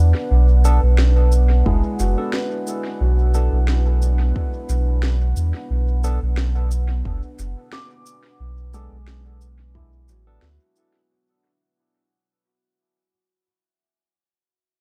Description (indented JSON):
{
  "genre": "ambient dub",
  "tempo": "89 BPM",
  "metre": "4/4",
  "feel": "swing 53% on 16ths",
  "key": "B dorian",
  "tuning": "A4 = 440 Hz",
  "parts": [
    { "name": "deep dark ambient pad", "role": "sustained chords", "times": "0.0-11.1 s", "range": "B3 to F#5", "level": "-33 LUFS", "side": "equal", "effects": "chorus, built-in reverb" },
    { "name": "felt-muted upright piano", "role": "arpeggios", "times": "0.0-13.4 s", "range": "F#3 to D6", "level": "-32 LUFS", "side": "equal", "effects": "analog delay" },
    { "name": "warm sub bass", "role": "bass", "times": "0.0-10.6 s", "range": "F#1 to E2", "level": "-18 LUFS", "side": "equal", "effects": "tube saturation" },
    { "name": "electronic cabasa and snare drum", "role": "drums", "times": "0.6-10.9 s", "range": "none", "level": "-34 LUFS", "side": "equal", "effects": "dub echo" },
    { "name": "barky tine electric piano", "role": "stabs", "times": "0.7-10.5 s", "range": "B3 to A4", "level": "-34 LUFS", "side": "equal", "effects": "overdrive, lush chorus, dub echo" },
    { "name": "electronic kick drum", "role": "drums", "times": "1.7-9.9 s", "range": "none", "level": "-27 LUFS", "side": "equal", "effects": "none" }
  ],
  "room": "little or no reverb",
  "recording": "echo-heavy mix",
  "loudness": "-19 LUFS",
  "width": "mono",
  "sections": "0.0-11.1 A section",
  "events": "fade-out 0.3-11.1",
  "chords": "0.0 Bm7"
}